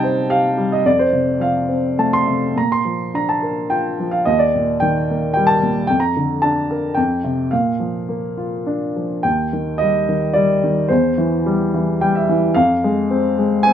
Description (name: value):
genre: classical, lyrical solo piano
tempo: 109 BPM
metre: 3/4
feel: rubato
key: Bb major, Eb major from 9.2 s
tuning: A4 = 440 Hz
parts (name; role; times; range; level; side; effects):
- warm upright piano; solo; 0.0-13.7 s; Eb2 to C6; -15 LUFS; equal; none
room: light reverb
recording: minimal, uncompressed stereo recording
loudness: -15 LUFS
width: side -9 dB against mid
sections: 0.0-9.2 A section; 9.2-13.7 B section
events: upright piano fill 11.7-12.5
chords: 0.0 Cm; 0.9 F; 2.6 Bb; 4.3 Eb; 5.9 Bb/F; 7.0 F5; 7.5 Bb; 9.2 Eb; 10.9 C/E; 12.5 Fm